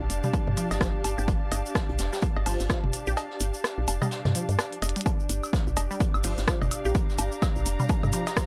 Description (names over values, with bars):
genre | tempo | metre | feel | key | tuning
minimal techno | 127 BPM | 4/4 | swing 59% on 16ths | G minor | A4 = 440 Hz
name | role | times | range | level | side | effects
woody FM bass | bass | 0.0-8.1 s | F1 to G2 | -31 LUFS | equal | sidechain pumping
muted studio string section | texture | 0.0-8.5 s | D4 to Bb5 | -37 LUFS | equal | sidechain pumping
jazz brush drum kit | drums | 0.1-8.5 s | hi-hat, snare drum | -44 LUFS | equal | high-pass filter on hats, high-pass filter on snare, high-pass filter on room
minimal click drum kit | drums | 0.1-8.5 s | hi-hat, rim click | -33 LUFS | equal | none
tube shaker | percussion | 0.1-8.5 s | none | -41 LUFS | equal | none
resonant blip pluck | riff | 0.2-8.4 s | F3 to G4 | -36 LUFS | equal | phaser, analog chorus, sidechain pumping, analog delay
electronic toms, woodblock and cowbell | percussion | 0.2-8.3 s | none | -34 LUFS | equal | tape echo
electronic kick drum | drums | 0.3-8.5 s | none | -30 LUFS | equal | overdrive
room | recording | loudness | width
little or no reverb | transformer saturation | -27 LUFS | mono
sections
0.0-5.1 A section; 5.1-8.5 B section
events
kick drops out 3.2-5.1; drum fill 4.8; drop 5.1-8.5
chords
0.0 G7(no3); 5.1 Gm7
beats
0.34 0.81 | 1.28 1.75 2.23 2.70 | 3.17 3.64 4.12 4.59 | 5.06 5.53 6.00 6.48 | 6.95 7.42 7.89 8.37